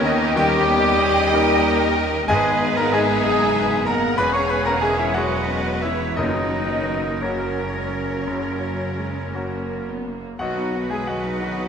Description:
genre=classical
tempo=55-64 BPM (dotted quarters)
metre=12/8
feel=rubato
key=unclear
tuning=A4 = 440 Hz
part: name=bright concert grand piano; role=melody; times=0.0-11.7 s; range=E1 to C#6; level=-24 LUFS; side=left 1 dB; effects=none
part: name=warm symphonic violin section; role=melody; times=0.0-11.7 s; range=C#4 to G4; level=-31 LUFS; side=left 3 dB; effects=none
part: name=bright clarinet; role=second line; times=0.0-11.7 s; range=C#4 to C#5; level=-29 LUFS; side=left 1 dB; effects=none
part: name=clear oboe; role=second line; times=0.0-11.7 s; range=C#4 to C#5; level=-30 LUFS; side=right 1 dB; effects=none
part: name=clear symphonic violin section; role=second line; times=0.0-11.7 s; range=A#4 to A#5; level=-30 LUFS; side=left 1 dB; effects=none
part: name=flute section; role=second line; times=0.0-11.7 s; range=C#5 to C#6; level=-28 LUFS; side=right 4 dB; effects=none
part: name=clear symphonic viola section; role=accompaniment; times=0.0-11.7 s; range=D#3 to D#4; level=-28 LUFS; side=right 2 dB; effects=none
part: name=mellow French horn section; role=sustained chords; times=0.0-11.7 s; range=C#3 to C#4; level=-28 LUFS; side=left 4 dB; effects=none
part: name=bright symphonic double bass section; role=bass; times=0.0-11.7 s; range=E1 to D#2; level=-31 LUFS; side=right 3 dB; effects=none
part: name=clear symphonic cello section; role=bass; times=0.0-11.7 s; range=G4 to B4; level=-29 LUFS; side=right 2 dB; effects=none
part: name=timpani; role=percussion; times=6.2-7.2 s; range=F#2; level=-33 LUFS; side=equal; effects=none
room=wet recital hall reverb, RT60 1.4 s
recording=nothing above 10.6 kHz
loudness=-18 LUFS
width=side -7 dB against mid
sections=0.0-11.7 A section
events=none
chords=0.0 D#7; 2.3 G#m; 4.2 C#m/E; 6.2 F#; 10.4 B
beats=0.38 1.33 | 2.29 3.23 4.17 5.15 | 6.17 7.22 8.26 9.34 | 10.39 11.40

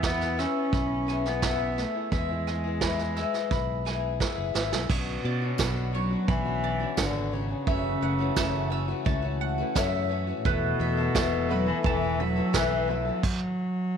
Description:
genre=indie folk with a building arrangement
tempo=86 BPM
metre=4/4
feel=straight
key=unclear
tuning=A4 = 440 Hz
part: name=warm cello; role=melody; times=0.0-14.0 s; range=A2 to C#4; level=-30 LUFS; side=equal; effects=none
part: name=picked old ladder-braced acoustic guitar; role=accompaniment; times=0.0-13.2 s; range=F#2 to A4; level=-32 LUFS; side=left 14 dB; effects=none
part: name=mandolin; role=arpeggios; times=0.0-13.2 s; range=B4 to E6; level=-35 LUFS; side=right 13 dB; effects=none
part: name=fingered electric bass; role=bass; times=0.0-13.1 s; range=E1 to B2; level=-32 LUFS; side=equal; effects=none
part: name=vintage brush drum kit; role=drums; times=0.0-13.4 s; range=crash cymbal, kick drum, snare drum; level=-29 LUFS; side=right 3 dB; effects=none
part: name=dark chamber string section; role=sustained chords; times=4.9-13.2 s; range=B2 to A4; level=-38 LUFS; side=left 13 dB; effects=none
part: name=tambourine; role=percussion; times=5.6-12.7 s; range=none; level=-43 LUFS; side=left 16 dB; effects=none
part: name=clear upright piano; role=accompaniment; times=10.5-13.3 s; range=E2 to B4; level=-38 LUFS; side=right 12 dB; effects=none
room=light reverb, small room ambience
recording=1960s-style stereo with parts hard left and right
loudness=-25 LUFS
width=side -7 dB against mid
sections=0.0-4.9 A section; 4.9-14.0 B section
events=drum fill 4.2-4.9; stop 13.2-14.0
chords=0.0 E; 4.9 Bmadd9; 7.7 F#m7; 10.5 Esus4; 13.2 N.C.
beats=0.03 0.73 1.42 | 2.12 2.81 3.50 4.20 | 4.89 5.59 6.28 6.98 | 7.67 8.37 9.06 9.76 | 10.45 11.15 11.85 12.54 | 13.24 13.93

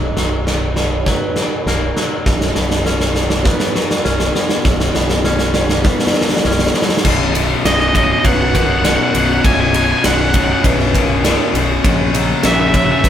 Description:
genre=post-rock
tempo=100 BPM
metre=4/4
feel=straight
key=B major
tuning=A4 = 440 Hz
part: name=ethereal airy pad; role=sustained chords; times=0.0-13.1 s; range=B3 to A#5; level=-26 LUFS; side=left 1 dB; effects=ensemble chorus, built-in reverb
part: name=twangy electric guitar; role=arpeggios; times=0.0-7.1 s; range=B1 to C#4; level=-26 LUFS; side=left 2 dB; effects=none
part: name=vibraphone with medium hard mallets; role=arpeggios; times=0.0-13.1 s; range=A#4 to D#5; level=-27 LUFS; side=right 3 dB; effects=none
part: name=growling fingered electric bass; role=bass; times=0.0-13.1 s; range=B0 to A#1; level=-20 LUFS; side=equal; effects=overdrive
part: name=big rock drum kit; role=drums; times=0.2-13.1 s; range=crash cymbal, kick drum, ride cymbal, snare drum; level=-16 LUFS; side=equal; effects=none
part: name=distorted electric guitar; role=riff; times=7.0-13.1 s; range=B1 to F#3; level=-17 LUFS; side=left 4 dB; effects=distortion
part: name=octave-fuzz lead guitar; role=melody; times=7.7-13.1 s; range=D#5 to G#5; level=-17 LUFS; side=equal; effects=distortion
room=moderate small room reverb, RT60 0.5 s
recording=band playing live in one room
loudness=-12 LUFS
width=side -10 dB against mid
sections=0.0-7.1 A section; 7.1-13.1 B section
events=build-up 0.0-7.1; drum fill 0.0-7.1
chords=0.0 Bmaj7; 2.3 F#7sus4/B; 7.1 Bmaj7; 11.8 F#/A#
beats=0.46 1.06 1.66 | 2.26 2.86 3.46 4.06 | 4.66 5.26 5.86 6.45 | 7.05 7.65 8.25 8.85 | 9.45 10.04 10.64 11.24 | 11.84 12.44 13.04

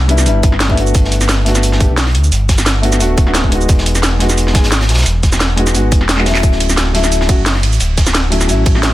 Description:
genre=liquid drum and bass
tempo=175 BPM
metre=4/4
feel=straight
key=D major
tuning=A4 = 439 Hz
part: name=sub bass with octave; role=bass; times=0.0-8.9 s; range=D1 to D2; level=-14 LUFS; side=equal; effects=none
part: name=dark grand piano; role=accompaniment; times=0.1-8.9 s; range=F#3 to G#4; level=-17 LUFS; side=left 2 dB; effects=digital delay
part: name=crunchy breakbeat drum kit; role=drums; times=0.1-8.9 s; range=hi-hat, snare drum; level=-23 LUFS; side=equal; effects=high-pass filter on hats, high-pass filter on snare, high-pass filter on room
part: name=drum and bass drum kit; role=drums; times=0.1-8.9 s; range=handclaps, hi-hat, ride cymbal, shaker, snare drum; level=-16 LUFS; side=equal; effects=none
part: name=electronic kick drum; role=drums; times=0.4-8.7 s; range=none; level=-12 LUFS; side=equal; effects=none
room=little or no reverb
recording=dense, heavily limited modern master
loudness=-10 LUFS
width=side -15 dB against mid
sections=0.0-8.9 A section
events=kick drops out 6.1-6.4; drum fill 6.2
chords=0.0 Cmaj9; 0.9 Gmaj9; 3.7 Emaj9; 6.4 Dmaj9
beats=0.26 0.60 | 0.95 1.29 1.63 1.98 | 2.32 2.66 3.00 3.35 | 3.69 4.03 4.38 4.72 | 5.06 5.41 5.75 6.09 | 6.43 6.78 7.12 7.46 | 7.80 8.15 8.49 8.83

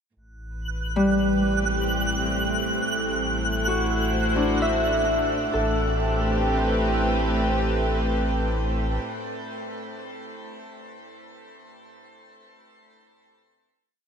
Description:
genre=ambient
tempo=67 BPM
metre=3/4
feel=straight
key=A dorian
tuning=A4 = 440 Hz
part: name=warm studio string section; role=sustained chords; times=0.2-9.0 s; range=A2 to C5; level=-28 LUFS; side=right 1 dB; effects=none
part: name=warm sub bass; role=bass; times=0.2-9.0 s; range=A1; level=-28 LUFS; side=equal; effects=none
part: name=analog drone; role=drone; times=1.4-9.1 s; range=A3 to E4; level=-36 LUFS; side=equal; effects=chorus
part: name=twinkling granular texture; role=texture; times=0.7-5.6 s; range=F#6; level=-30 LUFS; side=right 2 dB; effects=built-in reverb
part: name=Celtic harp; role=arpeggios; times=1.0-9.7 s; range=G3 to E5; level=-26 LUFS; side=left 1 dB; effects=tape echo
room=wet shimmer reverb, RT60 8.1 s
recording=none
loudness=-21 LUFS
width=side -7 dB against mid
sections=0.2-5.5 A section; 5.5-8.2 final chord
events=fade-in on string section 0.2-5.5; fade-out on synth drone 0.2-5.5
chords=0.2 Am7; 2.9 D7/A; 5.5 Am7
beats=| 0.17 1.06 1.96 | 2.85 3.75 4.64 | 5.54 6.43 7.33

